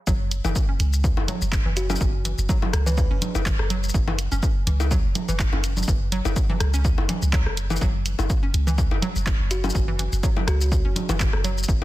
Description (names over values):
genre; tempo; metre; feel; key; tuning
minimal techno; 124 BPM; 4/4; swing 55% on 16ths; unclear; A4 = 441 Hz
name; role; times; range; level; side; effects
hollow square pluck; riff; 0.1-11.5 s; E3 to C#4; -32 LUFS; right 1 dB; chorus, sidechain pumping, dub echo
punchy sub bass; bass; 0.1-11.8 s; F#1 to C#2; -24 LUFS; equal; tube saturation, sidechain pumping
electronic kick drum; drums; 0.1-11.8 s; none; -23 LUFS; equal; none
punchy analog drum machine; drums; 0.1-11.8 s; handclaps, hi-hat, shaker; -31 LUFS; equal; none
electronic bongos, congas and rim click; percussion; 0.4-11.8 s; none; -30 LUFS; left 2 dB; none
buzzing kalimba; melody; 1.8-3.1, 9.5-10.7 s; F#4 to B4; -34 LUFS; equal; tape echo
room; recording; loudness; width
digital ambience; dense, heavily limited modern master; -20 LUFS; side -16 dB against mid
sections
0.1-11.8 A section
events
drop 0.1-11.8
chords
0.1 F#5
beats
| 0.07 0.56 1.04 1.52 | 2.01 2.49 2.98 3.46 | 3.94 4.43 4.91 5.39 | 5.88 6.36 6.85 7.33 | 7.81 8.30 8.78 9.27 | 9.75 10.23 10.72 11.20 | 11.69